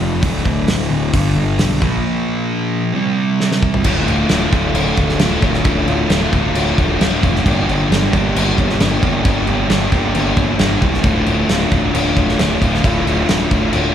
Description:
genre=quiet-loud alternative rock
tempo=133 BPM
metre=4/4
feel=straight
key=D minor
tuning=A4 = 439 Hz
part: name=thick fuzz guitar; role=riff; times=0.0-13.9 s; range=D2 to G4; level=-17 LUFS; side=equal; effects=distortion
part: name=fuzz picked electric bass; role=bass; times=0.0-13.9 s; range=D1 to C2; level=-19 LUFS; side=equal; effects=overdrive
part: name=loose indie drum kit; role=drums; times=0.2-13.8 s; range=crash cymbal, hi-hat, kick drum, snare drum, toms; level=-18 LUFS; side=equal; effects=none
room=light reverb, small room ambience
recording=live gig heard through the venue's PA, club reverb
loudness=-13 LUFS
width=side -9 dB against mid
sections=0.0-3.9 A section; 3.9-13.9 B section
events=drum fill 3.4-3.9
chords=0.2 D5; 1.1 G; 1.8 Bb5; 2.9 C5; 3.9 Dm; 7.5 Gm; 11.0 Dm

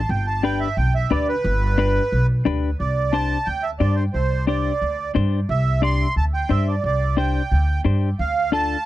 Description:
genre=latin, cumbia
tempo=178 BPM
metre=4/4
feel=straight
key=C major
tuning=A4 = 440 Hz
part: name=accordion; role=melody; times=0.0-8.9 s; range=B4 to C6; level=-24 LUFS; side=right 4 dB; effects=light tremolo tuning, tape echo
part: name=upright bass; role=bass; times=0.0-8.7 s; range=G1 to G2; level=-21 LUFS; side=equal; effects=none
part: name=clean electric guitar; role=accompaniment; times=0.4-8.8 s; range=D4 to D5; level=-23 LUFS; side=left 7 dB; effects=none
room=little or no reverb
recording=dry, close 1970s-style studio recording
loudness=-18 LUFS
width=side -15 dB against mid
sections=0.0-2.8 A section; 2.8-8.9 B section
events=accordion solo 0.0-2.8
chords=0.1 G; 2.8 Csus2; 8.2 Dm

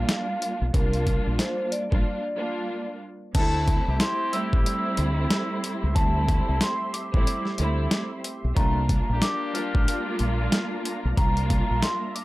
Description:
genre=hip hop, boom-bap hip-hop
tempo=92 BPM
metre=4/4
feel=swing 61% on 16ths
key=D minor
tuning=A4 = 440 Hz
part: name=vibraphone with soft mallets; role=melody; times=0.0-12.2 s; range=Bb4 to F6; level=-30 LUFS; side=equal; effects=high-pass filter, low-pass filter, digital delay
part: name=dark symphonic string section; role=accompaniment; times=0.0-12.2 s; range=G3 to F4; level=-30 LUFS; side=right 2 dB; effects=high-pass filter, low-pass filter
part: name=deep dub fingered electric bass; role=bass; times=0.0-11.8 s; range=A1 to D2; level=-25 LUFS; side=equal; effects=none
part: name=boom bap sampler-style drum kit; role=drums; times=0.1-12.2 s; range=crash cymbal, hi-hat, kick drum, snare drum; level=-24 LUFS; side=equal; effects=overdrive
part: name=lush unison pad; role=sustained chords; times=4.0-12.2 s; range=F4 to C6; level=-38 LUFS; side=equal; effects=chorus, high-pass filter, low-pass filter
part: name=warm horn section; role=stabs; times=3.4-10.2 s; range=A3 to A4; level=-34 LUFS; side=left 4 dB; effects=high-pass filter, low-pass filter, digital delay
room=little or no reverb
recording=none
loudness=-22 LUFS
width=side -18 dB against mid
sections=0.0-3.3 A section; 3.3-12.2 B section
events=break 2.0-3.3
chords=0.0 C9sus4; 3.3 D9sus4; 8.6 C9sus4

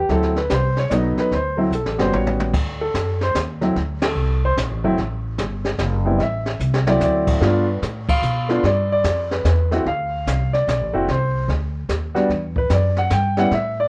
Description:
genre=jazz piano trio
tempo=148 BPM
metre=3/4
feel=swing 65% on 8ths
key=D mixolydian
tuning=A4 = 440 Hz
part: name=clear concert grand piano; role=melody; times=0.0-13.9 s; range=F#3 to G5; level=-22 LUFS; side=equal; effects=none
part: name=upright bass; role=bass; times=0.0-13.9 s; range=F#1 to B2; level=-24 LUFS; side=equal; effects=none
part: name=jazz brush drum kit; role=drums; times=0.1-13.9 s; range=brushed snare drum, crash cymbal, hi-hat, kick drum, ride cymbal, snare drum, toms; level=-28 LUFS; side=equal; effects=none
room=light reverb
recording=worn, warbling old tape, cassette tape, warbly pitch drift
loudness=-20 LUFS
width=mono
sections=0.0-2.5 A section; 2.5-13.9 A section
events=drum fill 1.7-2.5, 6.6-7.0; band accent 4.0, 8.0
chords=0.1 D9; 0.9 B7; 1.3 D7; 2.1 A9; 2.5 D7; 6.2 Am; 7.0 D9; 7.4 G9; 9.9 D7; 11.1 Csus2; 11.9 B; 12.3 Em

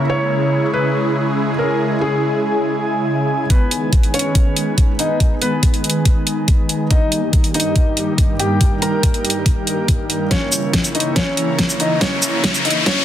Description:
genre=heavy wobble dubstep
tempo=141 BPM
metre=4/4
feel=half-time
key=G# harmonic minor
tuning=A4 = 443 Hz
part: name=supersaw pad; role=sustained chords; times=0.0-13.0 s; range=G2 to G#4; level=-21 LUFS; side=equal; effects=phaser, sidechain pumping, low-pass filter
part: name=airy breathy pad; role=texture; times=0.0-13.0 s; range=G3 to A#5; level=-24 LUFS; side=right 1 dB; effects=chorus, sidechain pumping
part: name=felt-muted upright piano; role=melody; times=0.1-13.0 s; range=B3 to A#5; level=-23 LUFS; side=left 1 dB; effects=tape echo
part: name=dubstep drum kit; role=drums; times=3.5-12.9 s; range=hi-hat, shaker, snare drum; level=-19 LUFS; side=equal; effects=none
part: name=electronic kick drum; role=drums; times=3.5-12.9 s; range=none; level=-15 LUFS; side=equal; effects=none
part: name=riser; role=sound effects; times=11.5-13.0 s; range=none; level=-22 LUFS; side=left 3 dB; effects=none
room=light reverb, digital ambience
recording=dense, heavily limited modern master, high-pass filter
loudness=-14 LUFS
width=side -11 dB against mid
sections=0.0-3.5 A section; 3.5-13.0 B section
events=build-up 3.5-13.0; filter sweep on supersaw synth 3.5-13.0; filter sweep 3.5-13.0; drum fill 10.3-13.0; riser 11.5-13.0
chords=0.1 C#m; 3.5 G#m; 6.9 D#/G; 10.3 A#dim

